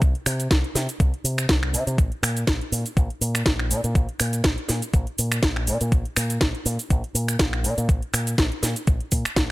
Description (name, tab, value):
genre	nu-disco, nu disco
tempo	122 BPM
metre	4/4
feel	swing 55% on 16ths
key	unclear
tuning	A4 = 440 Hz
part	fingered electric bass with an envelope filter	bass	0.0-9.5 s	Bb1 to C3	-25 LUFS	equal	none
part	electronic kick drum	drums	0.0-9.5 s	none	-21 LUFS	equal	overdrive
part	house drum kit	drums	0.0-9.5 s	cabasa, finger snaps, hi-hat, snare drum	-25 LUFS	equal	overdrive
room	little or no reverb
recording	none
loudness	-20 LUFS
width	side -19 dB against mid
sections	0.0-9.5 A section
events	none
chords	none